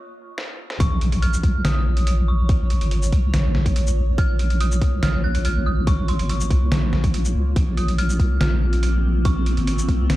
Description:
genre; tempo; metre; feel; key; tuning
deep dubstep; 142 BPM; 4/4; half-time; Bb minor; A4 = 441 Hz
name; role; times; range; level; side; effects
trip hop sampler-style drum kit; drums; 0.4-10.2 s; hi-hat, shaker, snare drum; -27 LUFS; equal; high-pass filter on hats, high-pass filter on perc, high-pass filter on snare, high-pass filter on room
dark detuned synth bell; melody; 0.8-10.1 s; C6 to Gb6; -32 LUFS; equal; chorus, dub echo
granular cloud pad; sustained chords; 1.3-10.2 s; Bb3 to Db5; -30 LUFS; right 1 dB; built-in reverb
deep soft wobble bass; bass; 0.8-10.2 s; Ab1 to Db2; -20 LUFS; equal; chorus
electronic kick drum; drums; 0.8-10.0 s; none; -20 LUFS; equal; high-pass filter on kick, high-pass filter on room
impact; sound effects; 0.8-2.5 s; none; -30 LUFS; equal; none
room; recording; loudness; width
digital ambience; dark, warm production, high-pass filter; -18 LUFS; side -16 dB against mid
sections
0.8-10.2 A section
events
break 0.0-0.8; drum fill 0.4-0.8; drop 0.8-10.2; impact 0.8-2.5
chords
0.0 N.C.; 0.8 Bbm

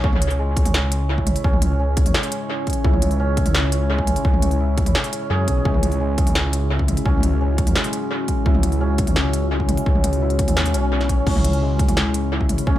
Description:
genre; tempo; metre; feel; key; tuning
half-time drum and bass; 171 BPM; 4/4; half-time; C# minor; A4 = 440 Hz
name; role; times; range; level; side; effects
deep dark ambient pad; sustained chords; 0.1-12.8 s; G#3 to C#5; -26 LUFS; left 1 dB; chorus, built-in reverb, sidechain pumping
santur; arpeggios; 0.0-12.8 s; G#3 to C#5; -27 LUFS; right 1 dB; vintage 12-bit sampler grit, tape echo
dark detuned saw bass; bass; 0.0-12.8 s; B1 to F#2; -21 LUFS; equal; none
electronic kick drum; drums; 0.0-12.7 s; none; -21 LUFS; equal; studio reverb
industrial drum kit; drums; 0.1-12.8 s; crash cymbal, hi-hat, snare drum, toms; -25 LUFS; equal; studio reverb, analog delay
room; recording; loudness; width
little or no reverb; echo-heavy mix; -17 LUFS; side -13 dB against mid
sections
0.0-12.8 A section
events
drop 0.0-12.8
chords
0.0 C#m

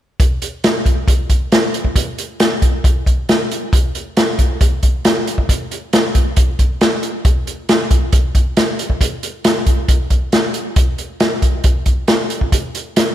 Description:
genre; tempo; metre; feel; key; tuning
rock; 136 BPM; 4/4; straight; none; none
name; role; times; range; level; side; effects
vintage drum kit; drums; 0.2-13.1 s; hi-hat, kick drum, snare drum; -13 LUFS; equal; none
room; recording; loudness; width
light reverb; none; -14 LUFS; side -12 dB against mid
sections
0.2-13.1 A section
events
none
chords
none

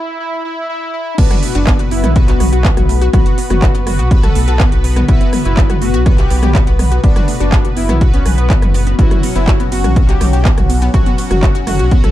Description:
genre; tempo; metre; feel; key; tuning
melodic techno; 123 BPM; 4/4; straight; unclear; A4 = 440 Hz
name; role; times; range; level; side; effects
wide unison lead; melody; 0.0-12.1 s; B3 to A4; -22 LUFS; left 1 dB; sidechain pumping, digital delay
analog pluck; arpeggios; 1.2-12.1 s; A3 to B4; -23 LUFS; equal; chorus, sidechain pumping, dub echo
analog synth brass; stabs; 1.2-12.1 s; F#3 to B4; -21 LUFS; left 3 dB; chorus, phaser, sidechain pumping, dub echo
round analog bass; bass; 1.2-12.1 s; F#1 to B1; -15 LUFS; equal; sidechain pumping
electronic kick drum; drums; 1.2-12.0 s; none; -12 LUFS; equal; none
techno drum kit; drums; 1.2-12.1 s; crash cymbal, handclaps, hi-hat, ride cymbal, rim click, toms; -20 LUFS; right 1 dB; none
room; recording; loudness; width
digital ambience; dark, warm production, high-pass filter; -10 LUFS; side -14 dB against mid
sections
0.0-1.2 A section; 1.2-12.1 B section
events
break 0.0-1.2; build-up 0.0-1.2; drop 1.2-12.1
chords
0.0 N.C.; 1.2 B5; 9.0 F#5

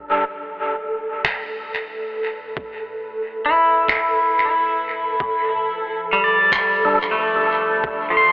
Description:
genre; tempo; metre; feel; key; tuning
ambient dub; 91 BPM; 4/4; swing 53% on 16ths; unclear; A4 = 440 Hz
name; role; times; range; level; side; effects
warbly tape-like pad; sustained chords; 0.0-8.3 s; A2 to B4; -34 LUFS; equal; chorus, built-in reverb
bubbling stepped-filter texture; texture; 0.0-8.3 s; A4; -27 LUFS; right 1 dB; chorus, built-in reverb
electronic kick drum; drums; 1.2-8.0 s; none; -28 LUFS; equal; none
finger snaps; drums; 1.2-6.7 s; none; -25 LUFS; equal; dub echo
pedal steel guitar; arpeggios; 3.5-8.3 s; F3 to C6; -16 LUFS; equal; dub echo
tonewheel organ; stabs; 6.8-7.0 s; G3 to A4; -24 LUFS; equal; overdrive, fast rotary speaker, low-pass filter, dub echo
room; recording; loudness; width
moderate huge ambient reverb, RT60 7.9 s; telephone sound; -17 LUFS; side -24 dB against mid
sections
0.0-8.3 A section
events
fade-in on ambient pad 0.0-8.3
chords
0.0 A5; 5.2 F69

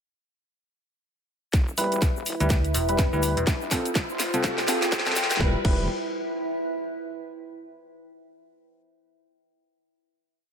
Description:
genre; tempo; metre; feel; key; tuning
bass house; 124 BPM; 4/4; swing 59% on 16ths; E phrygian; A4 = 440 Hz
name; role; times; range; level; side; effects
wobble bass; bass; 1.5-5.9 s; E1 to F2; -34 LUFS; equal; chorus, sidechain pumping, high-pass filter
electronic kick drum; drums; 1.5-5.8 s; none; -23 LUFS; equal; none
garage drum kit; drums; 1.5-5.8 s; crash cymbal, hi-hat, snare drum; -29 LUFS; equal; high-pass filter on snare, high-pass filter on hats, high-pass filter on cymbals, high-pass filter on room
egg shaker; percussion; 1.5-5.4 s; none; -36 LUFS; left 4 dB; none
riser; sound effects; 2.7-5.4 s; none; -35 LUFS; equal; none
warbly tape-like pad; texture; 2.2-7.3 s; E4 to G5; -31 LUFS; equal; chorus, built-in reverb, sidechain pumping
dark concert grand piano; stabs; 1.8-5.8 s; G3 to B4; -29 LUFS; equal; vintage 12-bit sampler grit, sidechain pumping, ping-pong delay
metallic FM bass; bass; 2.4-5.3 s; E1 to D2; -27 LUFS; equal; overdrive, sidechain pumping
room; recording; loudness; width
moderate digital room reverb, RT60 1.1 s, digital ambience; high-pass filter; -22 LUFS; side -7 dB against mid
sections
1.5-5.4 build; 5.4-7.3 final chord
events
build-up 1.5-5.4; drum fill 1.5-5.4; filter sweep 1.5-5.4; riser 2.7-5.4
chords
1.5 Em; 3.5 F; 5.4 Em

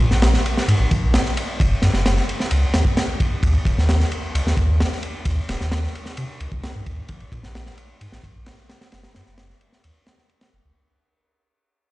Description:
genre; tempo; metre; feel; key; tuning
breakbeat, breaks; 131 BPM; 4/4; straight; unclear; A4 = 440 Hz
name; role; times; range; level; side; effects
saturated sub bass; bass; 0.0-10.7 s; Eb1 to C3; -19 LUFS; equal; none
crunchy breakbeat drum kit; drums; 0.1-10.5 s; kick drum, ride cymbal, snare drum; -21 LUFS; equal; none
room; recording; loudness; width
little or no reverb; played on a big sound system in a bare room, large studio reverb, nothing above 10.3 kHz; -18 LUFS; side -18 dB against mid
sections
0.0-10.8 A section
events
fade-out 0.0-10.8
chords
none

